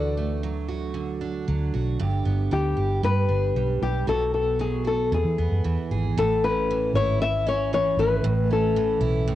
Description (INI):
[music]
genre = acoustic pop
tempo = 115 BPM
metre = 4/4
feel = straight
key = A major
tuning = A4 = 439 Hz
[part]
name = nylon-string guitar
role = melody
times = 0.0-9.0 s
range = G4 to E5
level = -24 LUFS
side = left 4 dB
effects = cassette tape
[part]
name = picked steel-string acoustic guitar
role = accompaniment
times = 0.0-9.3 s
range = E2 to G#4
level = -28 LUFS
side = right 5 dB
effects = cassette tape
[part]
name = vintage muted fingered electric bass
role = bass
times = 0.0-9.3 s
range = G1 to E3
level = -26 LUFS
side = equal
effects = none
[sound]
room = light reverb, small room ambience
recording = home recording on cassette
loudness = -21 LUFS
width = side -13 dB against mid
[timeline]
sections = 0.0-6.2 A section; 6.2-9.3 B section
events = none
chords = 0.0 D; 2.0 G; 4.1 B5; 5.1 E; 6.2 A